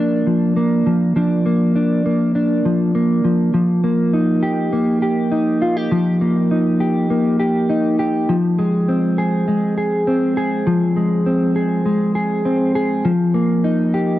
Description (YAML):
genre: dream pop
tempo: 101 BPM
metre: 4/4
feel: straight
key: Eb major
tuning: A4 = 441 Hz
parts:
  - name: mellow electric guitar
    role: solo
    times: 0.0-14.2 s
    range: F3 to Ab4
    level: -15 LUFS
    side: equal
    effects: analog chorus, analog delay
room: light reverb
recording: dry, gritty hardware recording, cassette tape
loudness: -15 LUFS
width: side -14 dB against mid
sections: 0.0-3.5 A section; 3.5-14.2 B section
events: none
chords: 0.0 Bb; 3.5 Ebadd9; 8.3 Fm; 13.0 Ebadd9